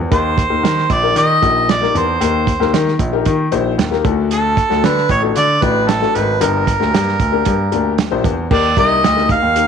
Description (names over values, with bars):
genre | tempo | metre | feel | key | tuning
uptempo 1960s-style soul | 114 BPM | 4/4 | straight | Eb major | A4 = 440 Hz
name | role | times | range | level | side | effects
warm concert grand piano | bass | 0.0-9.6 s | G1 to Eb3 | -18 LUFS | left 1 dB | none
mellow harmonica | melody | 0.1-9.7 s | A4 to F5 | -16 LUFS | right 2 dB | none
clear upright piano | accompaniment | 0.1-9.7 s | A3 to C5 | -20 LUFS | left 12 dB | none
warm soul drum kit | drums | 0.1-9.7 s | crash cymbal, hi-hat, kick drum, snare drum | -19 LUFS | right 4 dB | none
room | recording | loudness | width
light reverb, studio ambience | 1960s-style stereo | -12 LUFS | side -7 dB against mid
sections
0.0-8.5 A section; 8.5-9.7 B section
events
none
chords
0.1 Eb; 4.0 D; 6.4 Gm; 8.5 Eb